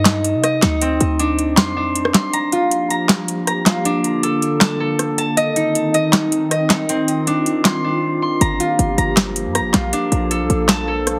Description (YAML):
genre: hip hop, trap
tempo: 158 BPM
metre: 4/4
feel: half-time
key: G minor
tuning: A4 = 444 Hz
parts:
  - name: concert harp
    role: arpeggios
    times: 0.0-11.2 s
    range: C4 to C6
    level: -21 LUFS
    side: equal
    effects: low-pass filter, digital delay
  - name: short 808-style bass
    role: bass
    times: 0.0-2.1, 8.4-11.2 s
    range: G1 to C3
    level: -24 LUFS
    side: equal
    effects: none
  - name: booming analog drum machine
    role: drums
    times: 0.1-11.2 s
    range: handclaps, hi-hat, rim click, snare drum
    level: -19 LUFS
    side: equal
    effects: overdrive
  - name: warbly tape-like pad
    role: sustained chords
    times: 2.7-11.2 s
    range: D3 to A4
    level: -25 LUFS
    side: equal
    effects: chorus, built-in reverb
room: light reverb, digital ambience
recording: heavily compressed radio sound, multiband compression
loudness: -17 LUFS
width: mono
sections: 0.0-11.2 A section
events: kick muted 2.3-8.4; drums muted 8.0-8.4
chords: 0.0 Cmadd9; 0.8 Dm7; 2.3 Gm7; 3.9 Bbmaj7; 5.4 Cm; 6.9 Dm7; 8.4 Gm7; 9.9 Bbmaj7